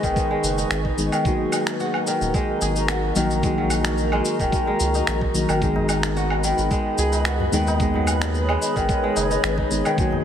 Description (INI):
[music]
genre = organic downtempo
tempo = 110 BPM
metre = 4/4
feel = straight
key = G# minor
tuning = A4 = 440 Hz
[part]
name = muted felt-like synth keys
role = accompaniment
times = 0.0-10.2 s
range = D#3 to G#4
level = -26 LUFS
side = left 2 dB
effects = chorus, sidechain pumping, digital delay
[part]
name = granular cloud pad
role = sustained chords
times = 0.0-10.2 s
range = F#4 to C#6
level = -27 LUFS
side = equal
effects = built-in reverb, sidechain pumping, shimmer reverb
[part]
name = kora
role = arpeggios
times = 0.0-10.2 s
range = D#3 to G#4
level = -25 LUFS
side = equal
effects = digital delay, shimmer reverb
[part]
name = round analog bass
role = bass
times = 0.0-9.8 s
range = D#1 to D#2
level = -25 LUFS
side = right 1 dB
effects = sidechain pumping
[part]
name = electronic kick drum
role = drums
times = 0.0-10.1 s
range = none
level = -25 LUFS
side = right 1 dB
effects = none
[part]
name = electronic shaker, finger snaps and woodblock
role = drums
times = 0.0-10.1 s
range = none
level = -27 LUFS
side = equal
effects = none
[part]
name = tabla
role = percussion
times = 5.8-10.2 s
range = none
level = -34 LUFS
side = left 2 dB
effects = none
[sound]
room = moderate echo chamber reverb, RT60 2.2 s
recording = heavily compressed radio sound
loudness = -19 LUFS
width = side -9 dB against mid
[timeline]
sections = 0.0-10.2 A section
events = none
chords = 0.0 G#m; 1.3 D#m; 5.6 G#m